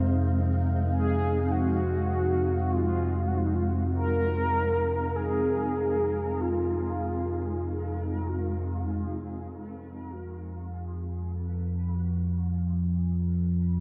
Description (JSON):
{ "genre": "dark ambient drone", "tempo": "free time", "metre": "none", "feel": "none", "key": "F phrygian", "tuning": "A4 = 440 Hz", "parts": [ { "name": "granular cloud pad", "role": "sustained chords", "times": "0.0-8.9 s", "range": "Ab3 to F5", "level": "-36 LUFS", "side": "equal", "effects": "built-in reverb" }, { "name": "bronze singing bowl", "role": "arpeggios", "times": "0.0-5.9 s", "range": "Ab3 to C4", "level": "-41 LUFS", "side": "equal", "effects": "none" }, { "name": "deep rumbling drone", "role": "drone", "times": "0.0-13.8 s", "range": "F2 to F3", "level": "-31 LUFS", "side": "equal", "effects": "built-in reverb" }, { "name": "mellow horn-like synth lead", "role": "melody", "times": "0.9-8.3 s", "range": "Eb4 to Bb4", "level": "-33 LUFS", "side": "equal", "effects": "analog chorus, diffuse ambient delay" } ], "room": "moderate huge ambient reverb, RT60 9.6 s", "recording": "none", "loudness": "-28 LUFS", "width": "mono", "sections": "0.0-8.9 A section; 8.9-13.8 B section", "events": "none", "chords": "0.0 F5", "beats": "free time" }